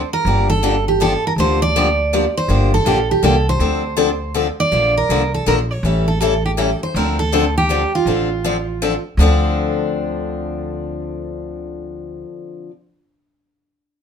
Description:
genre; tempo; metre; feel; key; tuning
acoustic string swing (jazz manouche); 161 BPM; 3/4; swing 63% on 8ths; D minor; A4 = 440 Hz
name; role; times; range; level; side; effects
picked steel-string acoustic guitar; melody; 0.0-12.2 s; D4 to D5; -19 LUFS; right 3 dB; none
upright bass; bass; 0.0-12.2 s; G1 to D2; -20 LUFS; equal; none
picked steel-string acoustic guitar; accompaniment; 0.3-12.7 s; D3 to A4; -20 LUFS; left 4 dB; none
room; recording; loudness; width
moderate studio reverb, RT60 0.7 s; minimal, uncompressed stereo recording; -15 LUFS; side -7 dB against mid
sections
0.0-9.2 A section; 9.2-11.4 B section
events
none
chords
0.3 Gm9; 3.6 Dm7; 4.7 Bbmaj7; 5.8 A7; 7.0 Dm7

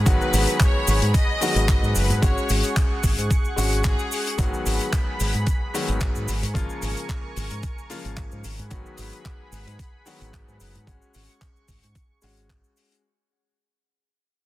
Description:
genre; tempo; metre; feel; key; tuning
nu-disco, nu disco; 111 BPM; 4/4; swing 54% on 16ths; G# dorian; A4 = 440 Hz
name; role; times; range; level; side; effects
clear symphonic violin section; melody; 0.0-4.3 s; G#4 to D#5; -29 LUFS; left 1 dB; tape echo
lush unison pad; sustained chords; 0.0-13.0 s; G#4 to C#6; -33 LUFS; right 1 dB; chorus, sidechain pumping
fingered electric bass with an envelope filter; bass; 0.0-12.6 s; F#1 to G#2; -24 LUFS; equal; none
bright concert grand piano; accompaniment; 0.1-13.0 s; C#3 to F#4; -29 LUFS; left 2 dB; sidechain pumping
damped 70s drum kit; drums; 0.1-13.0 s; handclaps, hi-hat; -30 LUFS; left 3 dB; none
electronic kick drum; drums; 0.1-12.6 s; none; -22 LUFS; equal; none
cabasa; percussion; 0.1-13.0 s; none; -33 LUFS; right 2 dB; none
room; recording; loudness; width
light reverb, studio reverb; dense, heavily limited modern master; -20 LUFS; side -16 dB against mid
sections
0.0-13.0 A section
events
fade-out 0.0-13.0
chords
0.0 G#m7; 2.2 F#sus2/G#; 4.4 G#m7; 6.3 A#m7/G#; 8.4 G#m7; 10.9 F#sus2/G#

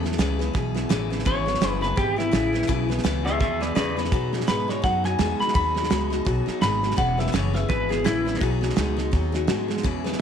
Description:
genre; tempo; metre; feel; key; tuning
rockabilly; 168 BPM; 4/4; swing 59% on 8ths; E major; A4 = 441 Hz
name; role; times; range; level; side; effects
picked steel-string acoustic guitar; accompaniment; 0.0-10.2 s; C#3 to B4; -29 LUFS; left 13 dB; none
electric guitar through a small old amp; riff; 0.0-10.2 s; E2 to G#3; -31 LUFS; right 12 dB; none
upright bass; bass; 0.0-10.2 s; E1 to B2; -27 LUFS; equal; none
cloth-damped thuddy drum kit; drums; 0.0-10.2 s; hi-hat, kick drum, snare drum; -26 LUFS; right 3 dB; none
electric guitar through a small old amp; melody; 1.3-8.4 s; E4 to B5; -26 LUFS; left 2 dB; tape echo
room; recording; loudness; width
light reverb, small room ambience; 1960s-style stereo with parts hard left and right; -21 LUFS; side -8 dB against mid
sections
0.0-9.8 A section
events
none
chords
0.0 E6; 4.1 B6; 7.0 E6; 8.4 B6

